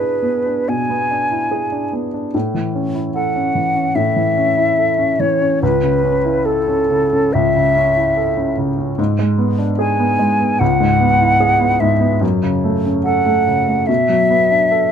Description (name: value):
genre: classical, romantic duo for flute and grand piano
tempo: 73 BPM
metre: 4/4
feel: rubato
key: A major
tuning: A4 = 439 Hz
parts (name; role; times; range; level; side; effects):
- mellow silver concert flute; melody; 0.0-14.9 s; A4 to G#5; -16 LUFS; equal; none
- warm grand piano; accompaniment; 0.0-14.9 s; C#2 to A4; -16 LUFS; equal; none
room: little or no reverb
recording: close, detailed microphones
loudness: -14 LUFS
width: side -8 dB against mid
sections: 0.0-14.9 A section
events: none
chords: 0.0 E7/B; 2.3 A; 5.6 A/C#; 9.0 G#dim; 10.6 C#m7; 12.2 F#m; 13.9 Bm7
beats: 0.68 1.52 | 2.34 3.15 3.96 4.78 | 5.62 6.46 7.34 8.16 | 8.98 9.79 10.61 11.41 | 12.22 13.06 13.88 14.71